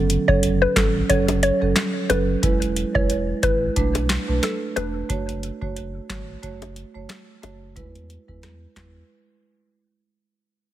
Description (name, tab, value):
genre	dancehall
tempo	90 BPM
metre	4/4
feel	swing 56% on 16ths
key	F# minor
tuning	A4 = 441 Hz
part	marimba with medium mallets	accompaniment	0.0-8.9 s	F#3 to C#5	-25 LUFS	right 4 dB	none
part	warm sub bass	bass	0.0-9.0 s	E1 to E2	-27 LUFS	equal	none
part	booming analog drum machine	drums	0.1-9.0 s	handclaps, hi-hat, kick drum, rim click, snare drum	-24 LUFS	equal	none
part	mallet-like synth pluck	melody	0.3-4.9 s	A4 to C#5	-23 LUFS	left 1 dB	chorus, ping-pong delay
part	bongos	percussion	1.3-7.6 s	none	-28 LUFS	left 8 dB	none
room	little or no reverb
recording	heavily compressed radio sound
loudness	-19 LUFS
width	side -13 dB against mid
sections	0.0-10.4 A section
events	fade-out 0.0-10.4; break 9.1-10.4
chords	0.0 F#m; 2.4 E; 3.8 Bm7; 5.1 F#m; 7.8 E; 9.1 N.C.